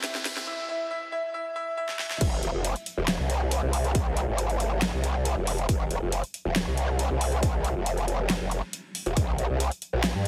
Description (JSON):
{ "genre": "heavy wobble dubstep", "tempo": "138 BPM", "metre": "4/4", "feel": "half-time", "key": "unclear", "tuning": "A4 = 441 Hz", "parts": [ { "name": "clear grand piano", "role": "melody", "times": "0.0-2.2 s", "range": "E4 to E5", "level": "-35 LUFS", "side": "equal", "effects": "digital delay" }, { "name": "supersaw pad", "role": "sustained chords", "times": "0.0-0.5 s", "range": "E3 to C5", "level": "-49 LUFS", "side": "equal", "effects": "none" }, { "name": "big-room dance drum kit", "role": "drums", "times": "0.0-10.3 s", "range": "crash cymbal, hi-hat, snare drum", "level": "-34 LUFS", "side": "equal", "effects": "none" }, { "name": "riser", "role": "sound effects", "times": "0.0-0.5 s", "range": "none", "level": "-41 LUFS", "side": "equal", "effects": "none" }, { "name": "growl bass", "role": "bass", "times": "2.2-10.3 s", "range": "Eb1 to G2", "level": "-28 LUFS", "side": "equal", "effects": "chorus, overdrive" }, { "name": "electronic kick drum", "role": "drums", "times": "2.2-9.3 s", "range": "none", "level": "-29 LUFS", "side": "equal", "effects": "none" } ], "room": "light reverb", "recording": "heavily compressed radio sound, multiband compression, high-pass filter", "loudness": "-28 LUFS", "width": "mono", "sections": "0.0-2.2 A section; 2.2-10.3 B section", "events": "build-up 0.0-2.2; drum fill 0.0-0.5, 1.9-2.2; riser 0.0-0.5; drop 2.2-10.3", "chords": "0.0 C/E; 2.2 F5; 9.2 C5", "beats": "0.04 | 0.47 0.91 1.34 1.77 | 2.21 2.65 3.08 3.51 | 3.95 4.38 4.82 5.25 | 5.69 6.12 6.56 6.99 | 7.43 7.86 8.30 8.73 | 9.17 9.60 10.04" }